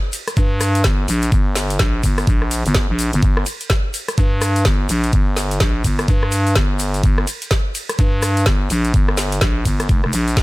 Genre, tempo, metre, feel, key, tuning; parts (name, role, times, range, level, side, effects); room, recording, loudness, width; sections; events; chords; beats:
bass house; 126 BPM; 4/4; swing 61% on 16ths; G minor; A4 = 439 Hz
garage drum kit; drums; 0.1-10.4 s; hi-hat, ride cymbal, rim click, snare drum; -23 LUFS; equal
tube shaker; percussion; 0.1-10.4 s; -30 LUFS; left 5 dB
growling FM bass; bass; 0.4-10.4 s; F1 to G2; -19 LUFS; equal; overdrive, sidechain pumping
electronic kick drum; drums; 0.4-10.4 s; -16 LUFS; equal
little or no reverb; -15 LUFS; side -20 dB against mid
0.0-10.4 A section
0.37 0.84 | 1.32 1.80 2.27 2.75 | 3.23 3.70 4.18 4.65 | 5.13 5.61 6.08 6.56 | 7.04 7.51 7.99 8.46 | 8.94 9.42 9.89 10.37